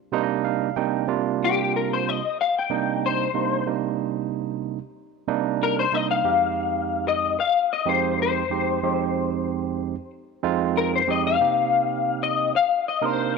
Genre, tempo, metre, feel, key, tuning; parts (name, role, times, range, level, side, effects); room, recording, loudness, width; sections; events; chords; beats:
blues; 93 BPM; 4/4; straight; C minor; A4 = 440 Hz
barky tine electric piano; accompaniment; 0.1-13.4 s; F2 to G5; -24 LUFS; right 12 dB; overdrive
electric guitar through a small old amp; melody; 1.4-13.4 s; G4 to G5; -22 LUFS; left 8 dB; ensemble chorus, slapback echo
moderate plate reverb, RT60 2.7 s; 1960s-style stereo with parts hard left and right; -21 LUFS; side -4 dB against mid
0.0-13.4 A section
tine electric piano fill 0.0-1.1
0.0 Cm7; 6.2 Fm7; 11.4 Cm7
0.45 | 1.09 1.74 2.38 3.02 | 3.67 4.31 4.96 5.60 | 6.25 6.89 7.54 8.18 | 8.83 9.48 10.12 10.77 | 11.41 12.06 12.71 13.35